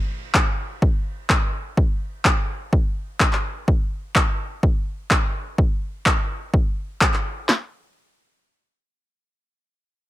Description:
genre	acid house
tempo	126 BPM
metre	4/4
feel	straight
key	none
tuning	none
part	electronic handclaps	drums	0.3-7.2 s	none	-21 LUFS	left 1 dB	none
part	punchy analog drum machine	drums	0.3-7.6 s	handclaps, kick drum, snare drum	-20 LUFS	equal	none
room	small room ambience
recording	none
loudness	-19 LUFS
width	side -16 dB against mid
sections	0.0-7.5 A section; 7.5-10.1 B section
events	none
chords	none

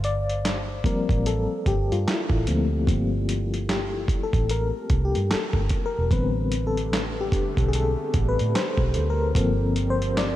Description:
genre	R&B, neo-soul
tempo	74 BPM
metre	4/4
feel	swing 61% on 16ths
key	G dorian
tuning	A4 = 440 Hz
part	FM electric piano with tremolo	accompaniment	0.0-10.4 s	D3 to F5	-26 LUFS	left 3 dB	none
part	vintage muted fingered electric bass	bass	0.0-10.4 s	E1 to A2	-25 LUFS	right 1 dB	none
part	dusty soul sampler-style drum kit	drums	0.0-10.4 s	handclaps, hi-hat, kick drum, snare drum	-25 LUFS	right 1 dB	overdrive
part	lush unison pad	sustained chords	6.6-10.4 s	D3 to C4	-34 LUFS	right 2 dB	chorus, phaser
room	light reverb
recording	none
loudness	-21 LUFS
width	side -14 dB against mid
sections	0.0-10.4 A section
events	FM electric piano solo 0.0-10.4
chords	0.0 Gm11; 6.1 Am11; 9.4 Gm11

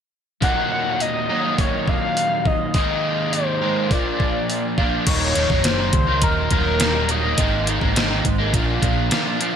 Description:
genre	indie rock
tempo	104 BPM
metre	4/4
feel	straight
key	Eb dorian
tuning	A4 = 440 Hz
part	overdriven synth lead	melody	0.4-7.7 s	Bb4 to Gb5	-23 LUFS	left 2 dB	chorus, phaser, digital delay
part	crunchy overdriven guitar	riff	0.4-9.6 s	Eb2 to F4	-21 LUFS	right 1 dB	analog chorus
part	detuned 8-bit digital drum machine	drums	0.4-9.5 s	crash cymbal, hi-hat, kick drum, snare drum	-22 LUFS	equal	gated reverb
part	hollow-body short-scale fingered electric bass	bass	5.1-9.1 s	Eb1 to Db2	-24 LUFS	equal	none
room	light reverb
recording	bright 1980s-style digital production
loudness	-17 LUFS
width	side -8 dB against mid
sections	0.4-5.1 A section; 5.1-9.6 B section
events	none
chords	0.4 Ebm; 2.8 Abadd9; 3.9 Bb; 5.1 Ebm7; 7.4 Absus2; 8.5 Bb

